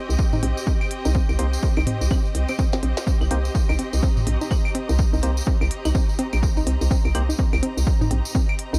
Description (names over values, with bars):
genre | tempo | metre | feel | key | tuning
minimal techno | 125 BPM | 4/4 | swing 60% on 16ths | C minor | A4 = 441 Hz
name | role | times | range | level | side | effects
rich studio string section | texture | 0.0-8.8 s | C4 to Bb5 | -35 LUFS | equal | sidechain pumping
hollow knocking FM bass | bass | 0.1-8.8 s | Bb1 to C2 | -24 LUFS | equal | sidechain pumping
tambourine | percussion | 0.1-8.8 s | none | -38 LUFS | equal | none
electronic kick drum | drums | 0.2-8.5 s | none | -24 LUFS | equal | none
hollow square pluck | riff | 0.3-8.8 s | C4 to Eb4 | -31 LUFS | equal | chorus, sidechain pumping, digital delay
electronic toms and claves | percussion | 0.3-8.6 s | none | -31 LUFS | equal | overdrive
minimal click drum kit | drums | 0.4-8.7 s | hi-hat, snare drum | -34 LUFS | equal | none
percussive organ stab | stabs | 1.4-7.2 s | Bb3 to C5 | -36 LUFS | equal | chorus, cassette tape, dub echo
room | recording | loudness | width
little or no reverb | dark, warm production | -22 LUFS | mono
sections
0.0-8.8 A section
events
drum fill 2.7-3.1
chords
0.0 Cm7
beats
0.19 0.67 | 1.15 1.63 2.11 2.59 | 3.07 3.55 4.03 4.51 | 4.99 5.47 5.95 6.43 | 6.91 7.39 7.87 8.35